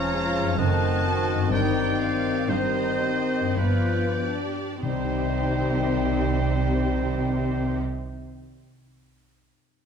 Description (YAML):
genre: classical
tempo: 44-71 BPM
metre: 3/4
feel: rubato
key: C minor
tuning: A4 = 435 Hz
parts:
  - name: clear symphonic violin section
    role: melody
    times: 0.0-7.8 s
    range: C5 to Bb5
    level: -35 LUFS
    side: equal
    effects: none
  - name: bright oboe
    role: second line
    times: 0.0-7.8 s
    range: B4 to D#5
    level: -34 LUFS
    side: right 4 dB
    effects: none
  - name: clear clarinet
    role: second line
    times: 0.0-7.8 s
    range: Eb4 to Db5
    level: -34 LUFS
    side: right 1 dB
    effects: none
  - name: silver concert flute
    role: second line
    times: 0.0-7.8 s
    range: G5 to G6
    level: -34 LUFS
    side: left 2 dB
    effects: none
  - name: warm symphonic violin section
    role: second line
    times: 0.0-7.8 s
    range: Eb4 to F5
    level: -35 LUFS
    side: left 3 dB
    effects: none
  - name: clear symphonic viola section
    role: accompaniment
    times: 0.0-7.8 s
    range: F3 to G4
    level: -32 LUFS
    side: equal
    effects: none
  - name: mellow bassoon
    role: accompaniment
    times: 0.0-7.8 s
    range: D#3 to G3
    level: -33 LUFS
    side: right 4 dB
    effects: none
  - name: dark French horn section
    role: sustained chords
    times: 0.0-7.8 s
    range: D#3 to Db4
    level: -30 LUFS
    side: left 7 dB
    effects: none
  - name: concert harp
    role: arpeggios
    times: 0.0-8.7 s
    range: F2 to G5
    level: -31 LUFS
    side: left 8 dB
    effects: none
  - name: rich symphonic cello section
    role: bass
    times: 0.0-7.8 s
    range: F2 to C3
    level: -30 LUFS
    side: right 3 dB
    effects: none
  - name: warm symphonic double bass section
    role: bass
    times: 0.0-7.8 s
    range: F1 to C2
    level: -30 LUFS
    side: right 4 dB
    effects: none
  - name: timpani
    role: percussion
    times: 4.8-7.8 s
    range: C3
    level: -37 LUFS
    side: left 1 dB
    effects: none
room: moderate recital hall reverb, RT60 1.7 s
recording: none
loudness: -22 LUFS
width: side -7 dB against mid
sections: 0.0-4.8 A section; 4.8-8.3 B section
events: slowing down 0.0-4.8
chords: 0.0 Db/F; 0.6 F#dim7; 1.5 Cm/G; 3.6 G7; 4.8 Cm